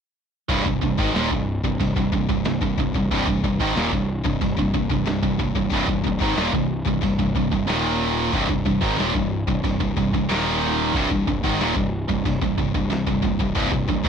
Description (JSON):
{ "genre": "heavy metal", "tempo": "92 BPM", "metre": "4/4", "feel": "straight", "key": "C minor", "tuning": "A4 = 439 Hz", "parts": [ { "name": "biting overdriven guitar", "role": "riff", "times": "0.5-14.1 s", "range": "C2 to Eb3", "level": "-27 LUFS", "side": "left 2 dB", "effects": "none" }, { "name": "heavy high-gain guitar", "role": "riff", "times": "0.5-14.1 s", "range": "C2 to Eb3", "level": "-27 LUFS", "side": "left 12 dB", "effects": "distortion" }, { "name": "tight distorted guitar", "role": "riff", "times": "0.5-14.1 s", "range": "C2 to Eb3", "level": "-24 LUFS", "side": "right 10 dB", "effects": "distortion" }, { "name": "fuzz picked electric bass", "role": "bass", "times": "0.5-14.1 s", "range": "C1 to Ab1", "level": "-27 LUFS", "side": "left 1 dB", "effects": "overdrive" }, { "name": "lo-fi sampler-style drum kit", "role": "drums", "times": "0.5-14.1 s", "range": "crash cymbal, kick drum, snare drum", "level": "-27 LUFS", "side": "left 1 dB", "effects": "none" } ], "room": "little or no reverb", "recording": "dry, close 1970s-style studio recording", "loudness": "-20 LUFS", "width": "side -7 dB against mid", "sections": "0.5-14.1 A section", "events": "none", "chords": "0.5 Cm; 7.7 Eb5; 8.3 Cm; 10.3 Eb5; 10.9 Cm" }